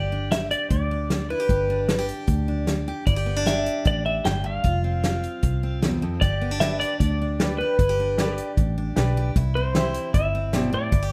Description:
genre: honky-tonk and classic country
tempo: 153 BPM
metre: 4/4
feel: straight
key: G mixolydian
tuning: A4 = 440 Hz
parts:
  - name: pedal steel guitar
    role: melody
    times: 0.0-11.1 s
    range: B4 to G5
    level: -28 LUFS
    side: equal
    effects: none
  - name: picked steel-string acoustic guitar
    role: accompaniment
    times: 0.0-11.1 s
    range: E2 to G4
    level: -32 LUFS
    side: equal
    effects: none
  - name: vintage muted fingered electric bass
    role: bass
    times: 0.0-11.1 s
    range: F1 to D2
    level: -28 LUFS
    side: equal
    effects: none
  - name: natural country drum kit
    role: drums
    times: 0.3-11.0 s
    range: hi-hat, kick drum, snare drum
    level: -27 LUFS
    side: equal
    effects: none
  - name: bright grand piano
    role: accompaniment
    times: 6.6-10.8 s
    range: G4 to E5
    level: -34 LUFS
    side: equal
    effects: none
room: light reverb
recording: none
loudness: -23 LUFS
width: mono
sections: 0.0-11.1 A section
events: none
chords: 0.0 G5; 4.6 F5; 6.2 G; 9.4 C

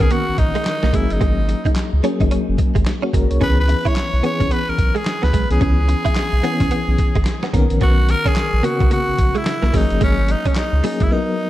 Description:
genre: R&B, new jack swing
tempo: 109 BPM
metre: 4/4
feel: swing 61% on 16ths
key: C# dorian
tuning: A4 = 441 Hz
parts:
  - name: growling tenor saxophone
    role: melody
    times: 0.0-11.5 s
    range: C#4 to C#5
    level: -23 LUFS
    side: equal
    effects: analog delay
  - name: FM electric piano with tremolo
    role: accompaniment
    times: 0.0-11.5 s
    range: C#3 to C#5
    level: -23 LUFS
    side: left 4 dB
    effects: none
  - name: direct-recorded clean electric guitar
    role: riff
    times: 0.0-11.1 s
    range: F#3 to E4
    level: -26 LUFS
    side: right 5 dB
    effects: ensemble chorus
  - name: round analog bass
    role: bass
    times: 0.0-11.1 s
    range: F#1 to C#2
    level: -18 LUFS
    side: equal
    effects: none
  - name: boom bap sampler-style drum kit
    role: drums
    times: 0.0-11.1 s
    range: handclaps, hi-hat, kick drum, snare drum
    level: -19 LUFS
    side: equal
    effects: none
room: light reverb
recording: none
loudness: -15 LUFS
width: side -14 dB against mid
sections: 0.0-11.5 A section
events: silent gap 11.1-11.5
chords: 0.0 Bmaj9; 0.9 G#9sus4; 3.4 C#m7; 7.5 Bmaj9; 9.7 G#9sus4

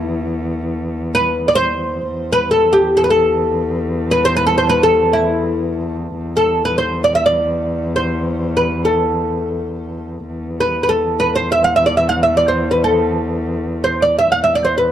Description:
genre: Arabic maqam ensemble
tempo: free time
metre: none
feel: none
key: E maqam bayati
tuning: A4 = 440 Hz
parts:
  - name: oud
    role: melody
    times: 0.0-14.9 s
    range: E4 to F#5-50c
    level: -15 LUFS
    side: equal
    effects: none
  - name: dark cello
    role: drone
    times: 0.0-14.9 s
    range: E2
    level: -21 LUFS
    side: left 1 dB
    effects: none
room: light reverb, small room ambience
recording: dry, close 1970s-style studio recording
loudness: -14 LUFS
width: side -10 dB against mid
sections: 0.0-6.2 A section; 6.2-14.9 A section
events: none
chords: none

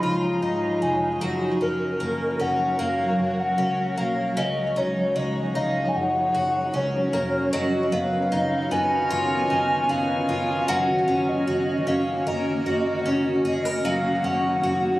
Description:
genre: dream pop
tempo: 76 BPM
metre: 4/4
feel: straight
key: unclear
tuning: A4 = 439 Hz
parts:
  - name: hollow clarinet-like synth lead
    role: melody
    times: 0.0-15.0 s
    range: A#4 to B5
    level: -25 LUFS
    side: equal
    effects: chorus, ping-pong delay
  - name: granular cloud pad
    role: sustained chords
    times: 0.0-15.0 s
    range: C#3 to C#5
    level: -28 LUFS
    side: right 1 dB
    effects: built-in reverb
  - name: picked twelve-string acoustic guitar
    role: arpeggios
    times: 0.0-15.0 s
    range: C#3 to A#4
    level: -26 LUFS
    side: equal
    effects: wide subtle chorus, ping-pong delay
  - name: vintage muted picked electric bass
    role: bass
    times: 0.0-15.0 s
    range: E#1 to G#2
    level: -34 LUFS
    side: equal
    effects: none
  - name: drifting glass-harmonics texture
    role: texture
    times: 0.0-1.6, 8.5-14.2 s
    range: G#4 to E#6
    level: -34 LUFS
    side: right 1 dB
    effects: chorus, built-in reverb, ping-pong delay
room: moderate huge ambient reverb, RT60 8.8 s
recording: recorded on a phone in the room, club ambience, compression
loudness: -21 LUFS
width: side -17 dB against mid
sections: 0.0-7.5 A section; 7.5-15.0 B section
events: none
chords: 0.0 C#add9; 1.2 F#; 4.4 C#add9; 5.9 F#; 7.5 C#9/F#; 10.7 D#m7/F#; 13.8 Bmaj9/F#

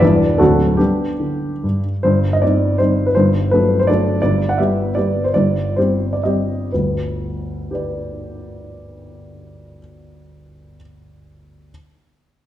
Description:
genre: classical, romantic triple-time dance for piano with dotted rhythms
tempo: 116-179 BPM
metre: 3/4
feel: rubato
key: G major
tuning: A4 = 439 Hz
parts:
  - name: dark baby grand piano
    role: solo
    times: 0.0-11.7 s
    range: D1 to F#5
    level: -15 LUFS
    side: equal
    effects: none
room: wet recital hall reverb, RT60 1.4 s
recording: dark, warm production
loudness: -15 LUFS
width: side -12 dB against mid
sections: 0.0-2.0 A section; 2.0-6.7 B section; 6.7-9.6 C section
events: slowing down 3.7-6.7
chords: 0.0 Em7; 0.4 D7; 0.8 G; 2.0 Cm/G; 3.1 D7/G; 4.2 G; 5.3 Cm/G; 6.7 G

